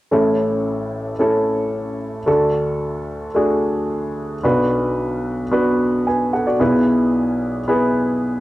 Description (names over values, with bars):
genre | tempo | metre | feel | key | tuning
pop | 111 BPM | 4/4 | straight | A major | A4 = 440 Hz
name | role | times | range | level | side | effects
warm upright piano | accompaniment | 0.1-8.4 s | A1 to G#5 | -17 LUFS | equal | cassette tape
room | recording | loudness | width
moderate studio reverb, RT60 0.6 s | home recording on cassette | -17 LUFS | side -16 dB against mid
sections
0.1-8.4 A section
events
none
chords
0.1 A; 2.3 D; 4.4 Bm; 6.6 E/B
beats
| 0.11 0.65 1.19 1.73 | 2.27 2.82 3.36 3.90 | 4.44 4.98 5.52 6.06 | 6.60 7.14 7.68 8.23